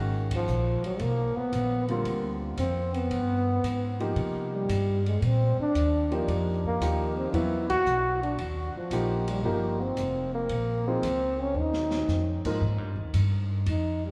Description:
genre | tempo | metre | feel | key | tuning
jazz, small-group swing and bop | 114 BPM | 4/4 | swing 69% on 8ths | Eb major | A4 = 441 Hz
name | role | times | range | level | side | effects
warm baby grand piano | accompaniment | 0.0-12.6 s | Ab2 to B4 | -36 LUFS | equal | none
upright bass | bass | 0.0-14.1 s | F1 to C3 | -31 LUFS | equal | none
breathy trombone | melody | 0.3-14.1 s | F3 to F#4 | -31 LUFS | equal | none
open jazz drum kit | drums | 0.3-13.8 s | crash cymbal, hi-hat, kick drum, ride cymbal, snare drum | -44 LUFS | equal | none
room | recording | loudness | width
moderate cathedral reverb, RT60 4.7 s | in a vast, echoing space, small room ambience | -28 LUFS | mono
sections
0.0-12.6 A section; 12.6-14.1 B section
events
band accent 0.2, 7.6; drum fill 11.5-12.1; trombone solo 12.6-14.1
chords
0.0 Abm9; 2.1 Bb69/D; 3.1 G7b9; 4.2 Cm7; 6.3 Ebadd9; 7.3 Esus2; 8.4 Eb69; 10.5 Bbm7; 11.5 Ebsus2; 12.6 N.C.

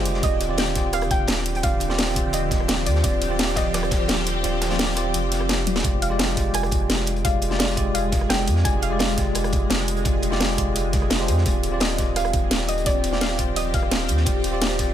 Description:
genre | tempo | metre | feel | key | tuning
liquid drum and bass | 171 BPM | 4/4 | straight | unclear | A4 = 438 Hz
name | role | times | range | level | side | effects
bell-like tine electric piano | accompaniment | 0.0-14.9 s | Ab3 to D5 | -27 LUFS | equal | fast stereo tremolo, dub echo
shimmering ambient pad | sustained chords | 0.0-14.9 s | D3 to Ab4 | -30 LUFS | left 1 dB | chorus, built-in reverb, phaser
sub bass with octave | bass | 0.0-14.9 s | Eb1 to F2 | -26 LUFS | equal | none
crunchy breakbeat drum kit | drums | 0.1-14.9 s | hi-hat, snare drum | -34 LUFS | equal | high-pass filter on hats, small room reverb, high-pass filter on snare, high-pass filter on room
garage drum kit | drums | 0.1-14.9 s | hi-hat, rim click, snare drum, toms | -25 LUFS | equal | small room reverb
soft round pluck | melody | 0.2-14.4 s | D5 to Ab5 | -28 LUFS | equal | chorus, ping-pong delay
electronic kick drum | drums | 0.2-14.9 s | none | -24 LUFS | equal | small room reverb
room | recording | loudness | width
little or no reverb | none | -19 LUFS | side -10 dB against mid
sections
0.0-14.9 A section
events
kick drops out 4.4-5.8; drum fill 5.7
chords
0.2 Ebmaj13; 5.8 Fm69; 11.5 Ebmaj13

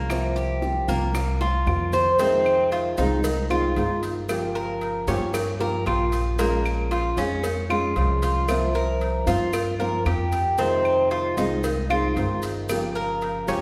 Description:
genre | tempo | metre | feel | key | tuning
latin, Cuban son and guajira | 114 BPM | 4/4 | straight | F minor | A4 = 439 Hz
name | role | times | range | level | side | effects
nylon-string guitar | accompaniment | 0.0-13.6 s | C3 to G4 | -30 LUFS | equal | none
Cuban tres | arpeggios | 0.0-13.6 s | Bb3 to C5 | -27 LUFS | equal | none
upright bass | bass | 0.0-13.6 s | G1 to G2 | -29 LUFS | equal | none
bongos and cowbell | percussion | 0.1-13.6 s | none | -35 LUFS | equal | none
claves | percussion | 0.1-13.0 s | none | -40 LUFS | equal | none
maracas | percussion | 0.1-13.6 s | none | -44 LUFS | equal | none
room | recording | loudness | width
wet concert hall reverb, RT60 1.7 s | recorded in a church or concert hall | -23 LUFS | mono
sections
0.0-2.2 A section; 2.2-13.6 B section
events
drum fill 1.4-2.2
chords
0.1 C7sus4; 2.2 Fm7; 4.3 Gm7b5; 6.4 Bbm7; 8.5 C7sus4; 10.6 Fm7; 12.7 Gm7b5

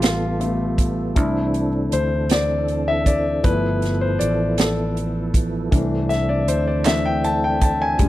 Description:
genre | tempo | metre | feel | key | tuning
slow gospel | 53 BPM (dotted quarters) | 6/8 | straight | C major | A4 = 438 Hz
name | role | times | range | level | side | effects
warm concert grand piano | accompaniment | 0.0-8.1 s | E3 to A5 | -22 LUFS | left 3 dB | none
tonewheel organ | sustained chords | 0.0-8.1 s | E3 to A4 | -26 LUFS | right 2 dB | fast rotary speaker, overdrive, chorus vibrato
fingered electric bass | bass | 0.0-8.1 s | F1 to D2 | -24 LUFS | equal | none
swinging big-band drum kit | drums | 0.0-8.1 s | hi-hat, kick drum, snare drum | -21 LUFS | right 1 dB | none
group handclap | percussion | 6.9-7.2 s | none | -29 LUFS | right 7 dB | none
room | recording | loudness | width
little or no reverb | dry, close 1970s-style studio recording | -18 LUFS | side -15 dB against mid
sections
0.0-8.1 A section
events
grand piano solo 0.0-8.1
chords
0.0 G9; 1.2 C69; 3.4 G13; 5.7 C69

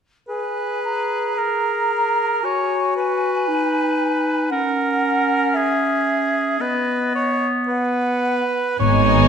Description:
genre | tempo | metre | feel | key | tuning
cinematic | 52-58 BPM | 4/4 | rubato | G# minor | A4 = 439 Hz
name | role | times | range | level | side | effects
clear clarinet | second line | 0.3-8.4 s | B3 to G#4 | -23 LUFS | left 1 dB | none
mellow hollow silver concert flute | second line | 0.3-8.4 s | D#5 to A#5 | -24 LUFS | left 1 dB | none
warm oboe | second line | 0.3-9.3 s | G#4 to C#5 | -22 LUFS | right 2 dB | none
rich symphonic violin section | melody | 8.8-9.3 s | G#5 | -25 LUFS | left 3 dB | none
warm symphonic violin section | second line | 8.8-9.3 s | D#4 | -23 LUFS | left 5 dB | none
rich symphonic viola section | accompaniment | 8.8-9.3 s | B3 | -20 LUFS | right 1 dB | none
concert harp | arpeggios | 8.8-9.3 s | G#2 | -19 LUFS | left 5 dB | none
rich chamber double bass section | bass | 8.8-9.3 s | G#1 | -17 LUFS | right 6 dB | none
room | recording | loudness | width
moderate scoring stage reverb, RT60 1.6 s | minimal, uncompressed stereo recording | -18 LUFS | side -7 dB against mid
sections
0.3-8.8 A section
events
none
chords
0.3 G#madd9; 2.4 F#sus2; 4.5 C#m; 6.6 B

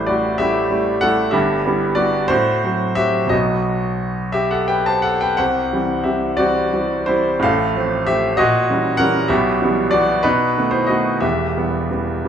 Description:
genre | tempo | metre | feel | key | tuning
classical, romantic character piece for solo piano | 56-66 BPM (dotted quarters) | 6/8 | rubato | E minor | A4 = 440 Hz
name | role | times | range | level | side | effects
warm grand piano | solo | 0.0-12.3 s | E1 to A5 | -16 LUFS | equal | none
room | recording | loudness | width
moderate recital hall reverb, RT60 1.4 s | minimal, uncompressed stereo recording | -16 LUFS | side -8 dB against mid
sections
0.0-12.3 A section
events
none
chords
0.0 A5; 1.3 Em/G; 2.3 F#dim/A; 3.3 B; 5.4 C; 7.4 F/A; 8.4 A#dim7; 9.3 Em/B; 10.2 B7; 11.2 Em

